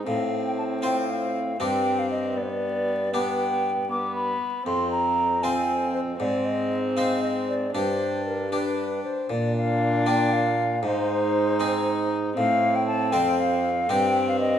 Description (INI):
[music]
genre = classical, renaissance-style consort dance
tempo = 78 BPM (dotted quarters)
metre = 6/8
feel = straight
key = unclear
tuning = A4 = 440 Hz
[part]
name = dark viola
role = accompaniment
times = 0.0-14.6 s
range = B3 to Eb4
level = -28 LUFS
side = equal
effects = none
[part]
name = harpsichord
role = accompaniment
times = 0.0-14.6 s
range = F2 to C5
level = -29 LUFS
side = left 1 dB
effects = none
[part]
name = bright trombone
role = bass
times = 0.0-14.6 s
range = F2 to Bb2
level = -30 LUFS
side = right 2 dB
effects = none
[part]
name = mellow hollow concert flute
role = melody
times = 0.1-14.6 s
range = Bb4 to D6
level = -26 LUFS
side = left 1 dB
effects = none
[sound]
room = moderate recital hall reverb, RT60 1.4 s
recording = minimal, uncompressed stereo recording, vinyl crackle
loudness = -22 LUFS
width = side -9 dB against mid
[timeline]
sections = 0.0-9.3 A section; 9.3-14.6 A section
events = none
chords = 0.1 F/A; 1.6 Gsus4; 2.4 G; 4.7 Fm; 6.2 Ab; 7.7 Gsus4; 9.3 Bb; 10.8 Ab; 12.4 F/A; 13.9 Gsus4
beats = | 0.07 0.83 | 1.60 2.36 | 3.14 3.90 | 4.67 5.43 | 6.20 6.96 | 7.74 8.51 | 9.29 10.06 | 10.83 11.60 | 12.37 13.13 | 13.89